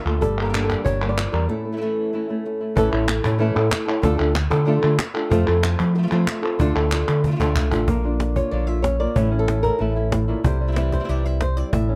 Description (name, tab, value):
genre	flamenco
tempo	187 BPM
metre	4/4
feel	straight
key	A phrygian dominant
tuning	A4 = 440 Hz
part	flamenco guitar	melody	0.0-12.0 s	A2 to E5	-25 LUFS	equal	none
part	flamenco guitar	stabs	0.0-11.8 s	C3 to G4	-31 LUFS	equal	none
part	fingered electric bass	bass	0.1-12.0 s	G1 to F3	-24 LUFS	equal	none
part	cajon	percussion	0.1-12.0 s	none	-28 LUFS	equal	none
part	palmas hand claps	percussion	0.1-7.9 s	none	-30 LUFS	equal	none
room	light reverb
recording	none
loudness	-21 LUFS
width	mono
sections	0.0-2.8 A section; 2.8-7.9 B section; 7.9-12.0 C section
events	break 1.5-2.8; drum fill 7.1-7.9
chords	0.2 Gm; 1.5 A; 4.0 Dm; 5.3 F; 6.6 Dm; 7.9 Bb; 9.2 A; 10.5 C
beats	| 0.22 0.54 0.86 1.18 | 1.49 1.81 2.13 2.45 | 2.77 3.08 3.40 3.72 | 4.04 4.36 4.67 4.99 | 5.31 5.63 5.95 6.27 | 6.59 6.92 7.24 7.56 | 7.88 8.20 8.52 8.84 | 9.17 9.49 9.81 10.13 | 10.45 10.77 11.09 11.41 | 11.73